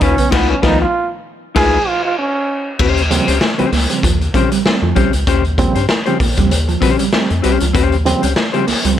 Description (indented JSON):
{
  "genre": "funk",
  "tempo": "97 BPM",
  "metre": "4/4",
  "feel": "swing 56% on 16ths",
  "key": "unclear",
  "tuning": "A4 = 440 Hz",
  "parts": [
    { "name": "bright trombone", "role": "melody", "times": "0.0-2.8 s", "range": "Cb4 to Ab4", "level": "-17 LUFS", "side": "right 3 dB", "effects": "none" },
    { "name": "mellow electric guitar", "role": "accompaniment", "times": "0.0-8.9 s", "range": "Db4 to C5", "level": "-19 LUFS", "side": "left 10 dB", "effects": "none" },
    { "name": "mellow electric guitar", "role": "riff", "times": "0.0-9.0 s", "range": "F3 to Db4", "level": "-23 LUFS", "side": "right 8 dB", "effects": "spring reverb" },
    { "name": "round analog bass", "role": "bass", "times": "0.0-9.0 s", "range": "Cb2 to G2", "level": "-17 LUFS", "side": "equal", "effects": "none" },
    { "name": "raw garage drum kit", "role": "drums", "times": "0.0-9.0 s", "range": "crash cymbal, hi-hat, kick drum, snare drum", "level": "-17 LUFS", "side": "left 1 dB", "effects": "none" },
    { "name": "barky reed electric piano", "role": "stabs", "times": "0.2-9.0 s", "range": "Db3 to C4", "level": "-20 LUFS", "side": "right 4 dB", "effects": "overdrive, fast tremolo" }
  ],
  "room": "little or no reverb",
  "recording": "none",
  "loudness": "-12 LUFS",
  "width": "side -10 dB against mid",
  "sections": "0.0-2.8 A section; 2.8-9.0 B section",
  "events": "trombone solo 0.0-2.8; band accent 0.3-2.8",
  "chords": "0.0 Db9; 2.8 Eb13"
}